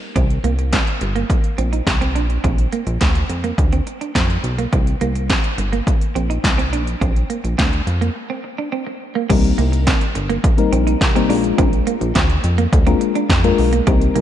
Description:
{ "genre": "early-eighties boogie funk", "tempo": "105 BPM", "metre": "4/4", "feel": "straight", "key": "C minor", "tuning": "A4 = 441 Hz", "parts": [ { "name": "clean electric guitar", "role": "riff", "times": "0.2-14.2 s", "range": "Bb3 to Eb4", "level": "-24 LUFS", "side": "right 6 dB", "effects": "wide subtle chorus, slapback echo" }, { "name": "chorused synth bass", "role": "bass", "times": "0.2-14.2 s", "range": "G1 to F2", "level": "-19 LUFS", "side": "equal", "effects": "none" }, { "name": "big-room dance drum kit", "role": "drums", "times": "0.2-14.2 s", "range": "crash cymbal, handclaps, hi-hat, kick drum, snare drum", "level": "-18 LUFS", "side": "equal", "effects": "none" }, { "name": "group handclap", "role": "percussion", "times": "0.7-7.7 s", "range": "none", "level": "-33 LUFS", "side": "left 5 dB", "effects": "none" }, { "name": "mellow FM electric piano", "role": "accompaniment", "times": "9.3-14.2 s", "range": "G3 to Bb4", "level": "-20 LUFS", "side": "left 6 dB", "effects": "chorus, slapback echo" } ], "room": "light reverb", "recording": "nothing above 10.5 kHz", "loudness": "-15 LUFS", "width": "side -11 dB against mid", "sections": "0.2-9.3 A section; 9.3-14.2 B section", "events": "band accent 0.0; break 8.2-9.3", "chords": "0.2 C7(no3); 2.2 Bb; 4.7 C7(no3); 6.7 Bb; 9.3 Cm7; 11.3 Bb7" }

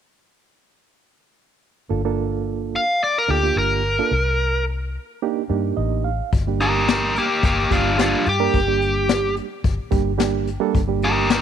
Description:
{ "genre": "straight-eighth soul blues", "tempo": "109 BPM", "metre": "4/4", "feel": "straight", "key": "G minor", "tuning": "A4 = 441 Hz", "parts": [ { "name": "reed electric piano", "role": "accompaniment", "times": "1.9-11.4 s", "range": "G3 to F5", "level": "-24 LUFS", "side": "right 12 dB", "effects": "fast tremolo" }, { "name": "vintage muted fingered electric bass", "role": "bass", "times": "1.9-11.4 s", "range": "G1 to G2", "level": "-24 LUFS", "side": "left 1 dB", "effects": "none" }, { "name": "biting overdriven guitar", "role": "melody", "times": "2.8-11.4 s", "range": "Bb3 to F5", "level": "-20 LUFS", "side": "left 1 dB", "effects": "none" }, { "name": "jazz brush drum kit", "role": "drums", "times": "6.3-11.4 s", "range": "hi-hat, kick drum, snare drum", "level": "-22 LUFS", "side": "left 4 dB", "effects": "none" } ], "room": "light reverb, small room ambience", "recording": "1960s-style stereo", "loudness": "-18 LUFS", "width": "side -9 dB against mid", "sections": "1.9-6.3 A section; 6.3-11.4 B section", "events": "reed electric piano fill 5.5-6.3", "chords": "1.9 Gm7; 4.1 Cm7; 6.3 Gm" }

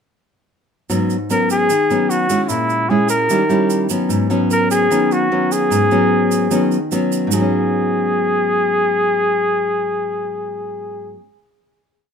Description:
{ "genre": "bossa nova", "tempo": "150 BPM", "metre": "4/4", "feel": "straight", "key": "G# minor", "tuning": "A4 = 436 Hz", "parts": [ { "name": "nylon-string guitar", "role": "accompaniment", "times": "0.9-11.3 s", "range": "G#2 to E4", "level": "-18 LUFS", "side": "equal", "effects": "none" }, { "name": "tube shaker", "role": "percussion", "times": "0.9-7.4 s", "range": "none", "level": "-28 LUFS", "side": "right 10 dB", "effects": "none" }, { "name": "clear flugelhorn", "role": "melody", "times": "1.3-11.2 s", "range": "E4 to A#4", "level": "-17 LUFS", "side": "left 1 dB", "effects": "plate reverb" } ], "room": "moderate studio reverb, RT60 0.6 s", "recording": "none", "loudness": "-14 LUFS", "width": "side -7 dB against mid", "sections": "0.9-7.3 A section; 7.3-10.5 final chord", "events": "none", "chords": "0.9 G#m7; 2.5 A#m7b5; 3.3 D#7b9; 4.1 G#m7" }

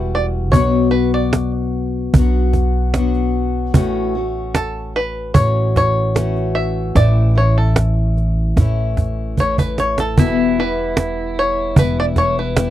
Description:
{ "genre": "acoustic folk duo or small band", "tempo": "75 BPM", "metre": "4/4", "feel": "straight", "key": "E dorian", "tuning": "A4 = 440 Hz", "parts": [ { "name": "bluegrass banjo", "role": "melody", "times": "0.0-12.7 s", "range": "A4 to E5", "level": "-20 LUFS", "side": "equal", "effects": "none" }, { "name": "picked acoustic archtop guitar", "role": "accompaniment", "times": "0.0-12.7 s", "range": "E2 to F#4", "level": "-21 LUFS", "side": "left 5 dB", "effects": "none" }, { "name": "upright bass", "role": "bass", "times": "0.0-12.7 s", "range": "E1 to B1", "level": "-18 LUFS", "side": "equal", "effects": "none" }, { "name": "cajon", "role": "percussion", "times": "0.5-12.7 s", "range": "none", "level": "-15 LUFS", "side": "right 2 dB", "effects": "none" }, { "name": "pedal steel guitar", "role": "second line", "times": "10.2-12.7 s", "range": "E4", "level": "-24 LUFS", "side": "right 6 dB", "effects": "none" } ], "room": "little or no reverb", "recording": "dry, close 1970s-style studio recording", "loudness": "-14 LUFS", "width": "side -12 dB against mid", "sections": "0.0-12.7 A section", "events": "five-string banjo solo 0.0-12.7; drum fill 9.4-10.2", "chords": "0.0 Emadd9; 0.5 Bm; 3.7 F#m7/A; 7.0 A; 10.2 Em" }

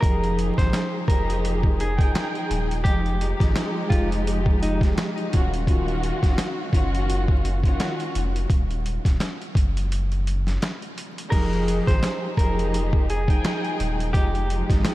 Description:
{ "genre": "hip hop, boom-bap hip-hop", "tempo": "85 BPM", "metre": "4/4", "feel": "swing 58% on 16ths", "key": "unclear", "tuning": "A4 = 440 Hz", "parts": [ { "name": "clean electric guitar", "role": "melody", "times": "0.0-4.8, 11.3-14.8 s", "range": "Eb4 to C5", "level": "-31 LUFS", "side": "equal", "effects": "harmonic tremolo, high-pass filter, low-pass filter, ping-pong delay" }, { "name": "dark studio string section", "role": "accompaniment", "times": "0.0-14.9 s", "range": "Eb3 to G5", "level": "-27 LUFS", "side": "equal", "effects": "cassette tape, high-pass filter, low-pass filter" }, { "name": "soft dub sub bass", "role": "bass", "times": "0.0-14.8 s", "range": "Eb1 to Ab1", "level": "-25 LUFS", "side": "equal", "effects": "none" }, { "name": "boom bap sampler-style drum kit", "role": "drums", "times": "0.0-14.9 s", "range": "crash cymbal, hi-hat, kick drum, snare drum", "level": "-23 LUFS", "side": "equal", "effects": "none" } ], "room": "light reverb", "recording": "vinyl crackle", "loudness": "-20 LUFS", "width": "side -17 dB against mid", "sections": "0.0-11.3 A section; 11.3-14.9 A section", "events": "break 9.9-11.3", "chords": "0.0 Fm9; 5.3 Ebm9; 11.3 Fm9" }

